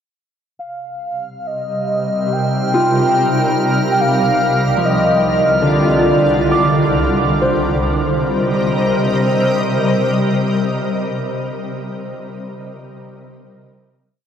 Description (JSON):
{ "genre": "ambient", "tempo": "70 BPM", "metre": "4/4", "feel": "straight", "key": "C minor", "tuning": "A4 = 440 Hz", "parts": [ { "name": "warm velvety synth lead", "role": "melody", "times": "0.6-11.6 s", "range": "C5 to G5", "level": "-19 LUFS", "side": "equal", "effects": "chorus, shimmer reverb, tape echo" }, { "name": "shimmering ambient pad", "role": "sustained chords", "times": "1.7-11.6 s", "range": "C2 to Eb5", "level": "-17 LUFS", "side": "equal", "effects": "chorus, built-in reverb, shimmer reverb" }, { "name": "drifting glass-harmonics texture", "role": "texture", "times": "2.0-7.4 s", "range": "F6", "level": "-29 LUFS", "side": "equal", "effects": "chorus, built-in reverb, shimmer reverb" }, { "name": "Celtic harp", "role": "arpeggios", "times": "2.7-12.3 s", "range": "D3 to D6", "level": "-20 LUFS", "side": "equal", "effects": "shimmer reverb, tape echo" } ], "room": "wet huge ambient reverb, RT60 8.3 s", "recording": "none", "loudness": "-14 LUFS", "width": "side -8 dB against mid", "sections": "0.6-7.4 A section; 7.4-10.8 final chord", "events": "fade-in on synth texture 0.6-7.4; filter sweep on ambient pad 0.6-7.4", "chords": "0.6 Cm7; 4.0 Gm7/C; 7.4 Cm7" }